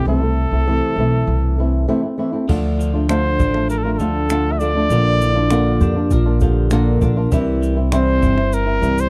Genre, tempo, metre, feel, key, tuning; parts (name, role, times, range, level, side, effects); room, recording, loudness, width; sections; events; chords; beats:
acoustic pop; 99 BPM; 4/4; straight; A4 = 441 Hz
clear trumpet; melody; 0.0-9.1 s; A4 to E5; -24 LUFS; equal
flamenco guitar; accompaniment; 0.0-9.1 s; Bb2 to F4; -22 LUFS; equal
upright bass; bass; 0.0-9.1 s; G1 to F2; -21 LUFS; equal
twelve-string electric guitar; arpeggios; 2.5-9.1 s; F3 to E4; -30 LUFS; equal
jazz brush drum kit; drums; 2.5-9.1 s; crash cymbal, finger snaps, kick drum, shaker; -24 LUFS; equal
vibraphone with medium hard mallets; second line; 5.2-7.7 s; E4 to Bb4; -29 LUFS; equal
little or no reverb; dry, close 1970s-style studio recording; -17 LUFS; mono
0.0-2.5 A section; 2.5-9.1 B section
break 1.9-2.5
0.0 Am; 2.5 Dm; 4.9 Bb; 7.3 C
| 0.07 0.67 1.28 1.89 | 2.49 3.10 3.70 4.30 | 4.91 5.51 6.12 6.72 | 7.32 7.92 8.53